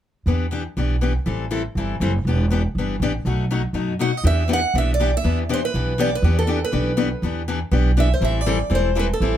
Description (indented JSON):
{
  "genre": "acoustic string swing (jazz manouche)",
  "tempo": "241 BPM",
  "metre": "4/4",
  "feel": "swing 57% on 8ths",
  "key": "E minor",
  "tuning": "A4 = 440 Hz",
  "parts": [
    { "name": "picked steel-string acoustic guitar", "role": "accompaniment", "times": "0.3-9.4 s", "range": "B2 to A4", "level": "-24 LUFS", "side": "left 5 dB", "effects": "none" },
    { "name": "upright bass", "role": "bass", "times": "0.3-9.4 s", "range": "E1 to F#2", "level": "-21 LUFS", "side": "right 1 dB", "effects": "none" },
    { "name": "picked steel-string acoustic guitar", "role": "melody", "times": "4.0-9.4 s", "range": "A4 to F#5", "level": "-23 LUFS", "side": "right 3 dB", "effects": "none" }
  ],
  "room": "light reverb",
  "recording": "close, detailed microphones",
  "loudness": "-18 LUFS",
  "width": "side -11 dB against mid",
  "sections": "0.3-4.2 A section; 4.2-9.4 B section",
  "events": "none",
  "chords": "0.3 Em7; 1.3 Am7; 2.3 Em7; 3.2 B7; 4.2 Em7; 8.2 Am7"
}